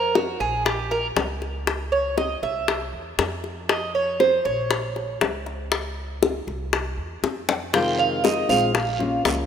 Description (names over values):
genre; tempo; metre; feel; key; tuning
latin, Cuban son and guajira; 119 BPM; 4/4; straight; unclear; A4 = 440 Hz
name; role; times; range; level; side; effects
Cuban tres; arpeggios; 0.0-9.2 s; Gb4 to G5; -24 LUFS; right 4 dB; none
upright bass; bass; 0.0-9.5 s; Bb1 to F2; -32 LUFS; equal; none
bongos; percussion; 0.2-9.5 s; none; -25 LUFS; left 6 dB; none
nylon-string guitar; accompaniment; 7.7-9.5 s; C3 to F4; -22 LUFS; left 3 dB; none
guiro; percussion; 7.7-9.5 s; none; -34 LUFS; right 4 dB; none
room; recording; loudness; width
wet lush hall reverb, RT60 2.9 s; rough home demo mix; -21 LUFS; side -8 dB against mid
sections
0.0-9.5 A section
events
Cuban tres solo 0.0-9.5; drum fill 7.2-7.7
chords
0.0 Ab7sus2; 0.7 Bbm; 1.7 Dbmmaj7; 2.7 C; 3.7 Bbmadd9; 4.7 Bbm; 5.7 N.C.; 6.7 C; 7.7 Fm7; 8.7 Bbm